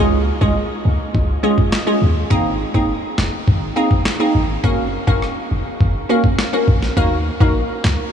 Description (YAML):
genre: dancehall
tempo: 103 BPM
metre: 4/4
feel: straight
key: unclear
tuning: A4 = 441 Hz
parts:
  - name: glassy wavetable pluck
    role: accompaniment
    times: 0.0-7.6 s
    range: Ab3 to Bb4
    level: -18 LUFS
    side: right 1 dB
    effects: chorus
  - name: warm 808-style bass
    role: bass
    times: 0.0-8.0 s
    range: F1 to Eb2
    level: -19 LUFS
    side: equal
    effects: none
  - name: breakbeat sampler-style drum kit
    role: drums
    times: 0.4-8.0 s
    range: handclaps, kick drum, rim click, snare drum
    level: -19 LUFS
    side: equal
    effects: vintage 12-bit sampler grit
room: moderate huge ambient reverb, RT60 9.0 s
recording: dreamy mix soaked in reverb, small room ambience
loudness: -15 LUFS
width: side -8 dB against mid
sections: 0.0-8.1 A section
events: none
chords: 0.0 Db; 2.3 Abadd9; 4.6 Gb; 7.0 Ebm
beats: 0.56 1.14 1.73 | 2.31 2.89 3.47 4.06 | 4.64 5.22 5.80 6.39 | 6.97 7.55